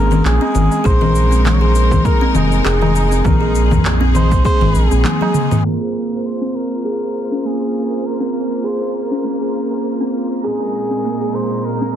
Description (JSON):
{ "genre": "organic downtempo", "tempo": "100 BPM", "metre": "4/4", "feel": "swing 55% on 16ths", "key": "unclear", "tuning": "A4 = 440 Hz", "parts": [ { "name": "trumpet with cup mute", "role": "melody", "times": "0.0-12.0 s", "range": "Ab4 to Db5", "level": "-24 LUFS", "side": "equal", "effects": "ping-pong delay" }, { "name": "clear symphonic string section", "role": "sustained chords", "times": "0.0-12.0 s", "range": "Bb2 to C5", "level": "-25 LUFS", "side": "left 3 dB", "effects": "sidechain pumping" }, { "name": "round analog bass", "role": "bass", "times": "0.0-5.1 s", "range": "F1 to Bb1", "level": "-15 LUFS", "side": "equal", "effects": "sidechain pumping" }, { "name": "buzzing kalimba", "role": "arpeggios", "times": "0.1-11.9 s", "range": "Bb3 to Bb4", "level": "-19 LUFS", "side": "right 2 dB", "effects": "low-pass filter, ping-pong delay" }, { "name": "afro-pop drum kit", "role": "drums", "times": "0.1-5.6 s", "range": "cabasa, congas, handclaps, toms", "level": "-19 LUFS", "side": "left 2 dB", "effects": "none" }, { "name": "tabla", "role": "percussion", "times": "0.4-5.6 s", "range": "none", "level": "-27 LUFS", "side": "right 4 dB", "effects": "none" }, { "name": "electronic kick drum", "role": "drums", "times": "0.9-4.6 s", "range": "none", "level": "-17 LUFS", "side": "equal", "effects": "overdrive" }, { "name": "twinkling granular texture", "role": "texture", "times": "7.0-12.0 s", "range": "Bb4", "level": "-31 LUFS", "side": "right 4 dB", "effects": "built-in reverb" } ], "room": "small room reverb", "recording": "dense, heavily limited modern master, low-pass filter", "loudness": "-14 LUFS", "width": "side -10 dB against mid", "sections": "0.0-5.6 A section; 5.6-12.0 B section", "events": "drum fill 5.0-5.6; band accent 5.0; filter sweep on kalimba 5.6-12.0; filter sweep 5.6-12.0", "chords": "0.0 Bb7(no3); 0.8 Ab6; 5.6 Bb7(no3); 10.4 Ab/Bb", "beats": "0.25 | 0.85 1.45 2.05 2.65 | 3.25 3.85 4.45 5.05 | 5.65 6.25 6.85 7.45 | 8.05 8.65 9.25 9.85 | 10.45 11.05 11.65" }